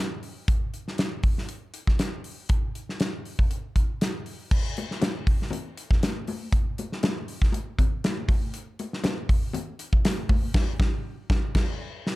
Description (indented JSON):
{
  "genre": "pop",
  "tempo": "119 BPM",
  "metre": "4/4",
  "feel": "swing 54% on 16ths",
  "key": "none",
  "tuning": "none",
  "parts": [
    { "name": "modern studio drum kit", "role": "drums", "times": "0.2-12.2 s", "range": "crash cymbal, hi-hat, kick drum, snare drum", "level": "-24 LUFS", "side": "equal", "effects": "none" },
    { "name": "congas", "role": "percussion", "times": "4.8-10.4 s", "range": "none", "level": "-34 LUFS", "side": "left 4 dB", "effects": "none" }
  ],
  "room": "little or no reverb",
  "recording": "dark, warm production",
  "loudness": "-24 LUFS",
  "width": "side -19 dB against mid",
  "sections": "0.0-4.5 A section; 4.5-12.2 B section",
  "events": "band accent 10.5-12.2",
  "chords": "none"
}